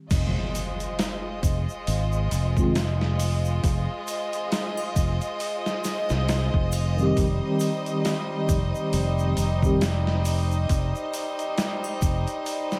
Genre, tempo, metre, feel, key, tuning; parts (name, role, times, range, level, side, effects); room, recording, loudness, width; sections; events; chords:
trip hop; 68 BPM; 4/4; swing 57% on 16ths; F minor; A4 = 441 Hz
mellow tine electric piano; accompaniment; 0.0-9.8 s; Eb3 to G4; -29 LUFS; equal; tremolo, tape echo
clear studio violin section; sustained chords; 0.1-12.8 s; G3 to Eb5; -32 LUFS; equal
fingered electric bass; bass; 0.1-12.2 s; F1 to C2; -27 LUFS; equal; tube saturation
dusty soul sampler-style drum kit; drums; 0.1-12.8 s; crash cymbal, hi-hat, kick drum, snare drum; -31 LUFS; equal
egg shaker and triangle; percussion; 0.1-12.8 s; -43 LUFS; equal
impact; sound effects; 0.1-3.6 s; -36 LUFS; equal
light reverb, digital ambience; vinyl crackle; -25 LUFS; mono
0.1-12.8 A section
impact 0.1-3.6
0.1 Fm7